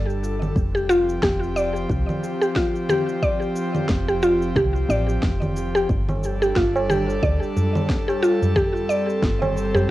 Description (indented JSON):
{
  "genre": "organic downtempo",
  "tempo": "90 BPM",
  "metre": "4/4",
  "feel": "swing 56% on 16ths",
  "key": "unclear",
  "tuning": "A4 = 440 Hz",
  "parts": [
    { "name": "airy breathy pad", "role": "sustained chords", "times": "0.0-9.9 s", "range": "F3 to A4", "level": "-27 LUFS", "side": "equal", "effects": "chorus, sidechain pumping" },
    { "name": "mallet-like synth pluck", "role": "arpeggios", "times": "0.0-9.9 s", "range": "F4 to D5", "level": "-22 LUFS", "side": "equal", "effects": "chorus, vintage 12-bit sampler grit, analog delay" },
    { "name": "woody FM bass", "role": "bass", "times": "0.0-9.9 s", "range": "F1 to D2", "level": "-25 LUFS", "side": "equal", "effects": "sidechain pumping" },
    { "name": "electronic cabasa, congas and snare drum", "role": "drums", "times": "0.1-9.9 s", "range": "none", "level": "-28 LUFS", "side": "right 1 dB", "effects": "cassette tape" },
    { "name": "electronic kick drum", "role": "drums", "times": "0.6-9.4 s", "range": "none", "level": "-25 LUFS", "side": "equal", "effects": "overdrive, cassette tape" },
    { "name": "tabla", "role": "percussion", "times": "6.1-9.9 s", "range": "none", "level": "-25 LUFS", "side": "right 1 dB", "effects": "none" }
  ],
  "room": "moderate studio reverb, RT60 0.6 s",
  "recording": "home recording on cassette",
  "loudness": "-19 LUFS",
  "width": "side -15 dB against mid",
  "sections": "0.0-9.9 A section",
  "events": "none",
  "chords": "0.0 G5; 0.6 F5; 5.9 G7(no3)"
}